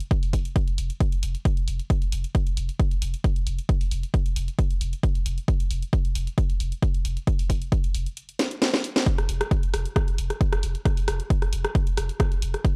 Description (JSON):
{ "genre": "driving peak-time techno", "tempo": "134 BPM", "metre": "4/4", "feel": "straight", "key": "unclear", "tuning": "A4 = 440 Hz", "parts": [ { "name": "techno drum kit", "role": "drums", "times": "0.0-12.7 s", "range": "hi-hat, rim click, snare drum", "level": "-31 LUFS", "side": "equal", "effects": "none" }, { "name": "electronic kick drum", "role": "drums", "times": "0.1-12.7 s", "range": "none", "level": "-25 LUFS", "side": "equal", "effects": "none" }, { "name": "warm sub bass", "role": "bass", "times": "0.2-12.5 s", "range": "F1", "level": "-31 LUFS", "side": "equal", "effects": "overdrive, sidechain pumping, low-pass filter" } ], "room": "little or no reverb", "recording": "dry, gritty hardware recording, cassette tape", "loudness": "-25 LUFS", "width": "mono", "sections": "0.0-12.8 A section", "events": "kick drops out 8.2-9.1; drum fill 8.4-9.1", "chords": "none" }